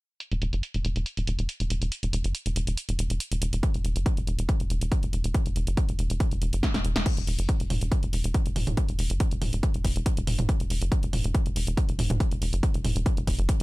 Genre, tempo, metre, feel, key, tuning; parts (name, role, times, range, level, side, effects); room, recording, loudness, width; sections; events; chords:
driving peak-time techno; 140 BPM; 4/4; straight; A4 = 441 Hz
punchy analog drum machine; drums; 0.2-13.6 s; crash cymbal, hi-hat, snare drum, toms; -32 LUFS; right 1 dB; sidechain pumping on hats, low-pass filter on hats, low-pass filter on snare, sidechain pumping on cymbals, low-pass filter on cymbals, sidechain pumping on toms, low-pass filter on toms
tight sequencer bass; bass; 0.3-13.6 s; E1 to F#1; -27 LUFS; equal; sidechain pumping
electronic kick drum; drums; 3.6-13.6 s; -26 LUFS; equal
digital ambience; -24 LUFS; side -21 dB against mid
0.2-7.1 A section; 7.1-13.6 B section
filter sweep on drum 0.2-7.1; filter sweep on analog synth bass 0.2-7.1; drum fill 6.6-7.1